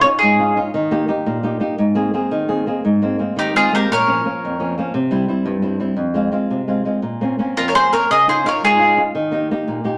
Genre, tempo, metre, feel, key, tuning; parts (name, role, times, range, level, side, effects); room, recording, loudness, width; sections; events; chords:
italian folk, Italian serenade; 114 BPM (dotted quarters); 6/8; rubato; Ab major; A4 = 439 Hz
bowl-back mandolin; melody; 0.0-0.6, 3.4-4.7, 7.6-9.0 s; G4 to Eb5; -18 LUFS; equal
flamenco guitar; accompaniment; 0.0-10.0 s; F2 to Ab4; -21 LUFS; equal
bowl-back mandolin; second line; 3.4-4.7, 7.6-9.0 s; Eb4 to Bb4; -22 LUFS; equal
wet club reverb, RT60 0.9 s; -18 LUFS; mono
0.0-2.9 A section; 2.9-10.0 A section
0.0 Dbadd9; 0.7 Eb; 1.8 Abadd9; 3.9 Bbm; 4.9 C; 6.0 Fm; 7.0 Bbmadd9; 8.1 Dbadd9; 9.1 Eb